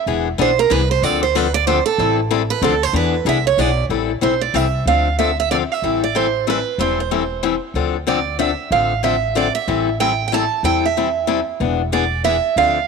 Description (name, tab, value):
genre	acoustic string swing (jazz manouche)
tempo	187 BPM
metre	3/4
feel	swing 61% on 8ths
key	A minor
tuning	A4 = 439 Hz
part	picked steel-string acoustic guitar	melody	0.0-12.9 s	A4 to A5	-18 LUFS	right 10 dB	none
part	picked steel-string acoustic guitar	accompaniment	0.1-12.8 s	D3 to A4	-20 LUFS	left 12 dB	none
part	upright bass	bass	0.1-12.9 s	E1 to E2	-23 LUFS	equal	transformer saturation
room	light reverb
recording	1960s-style stereo with parts hard left and right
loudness	-15 LUFS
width	side -5 dB against mid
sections	0.0-3.9 A section; 3.9-12.9 B section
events	steel-string acoustic guitar solo 0.0-3.9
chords	0.1 E7; 1.0 Dm7; 2.0 Am7; 2.6 Dm7; 2.9 E7; 3.9 Am7; 4.9 Dm7; 5.8 Am7; 7.8 Dm7; 9.7 Am7; 11.6 E7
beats	| 0.07 0.39 0.71 | 1.03 1.35 1.67 | 1.99 2.31 2.62 | 2.94 3.26 3.58 | 3.90 4.22 4.54 | 4.87 5.19 5.51 | 5.83 6.15 6.47 | 6.79 7.11 7.43 | 7.75 8.07 8.40 | 8.72 9.04 9.36 | 9.68 10.00 10.32 | 10.64 10.96 11.29 | 11.61 11.93 12.25 | 12.57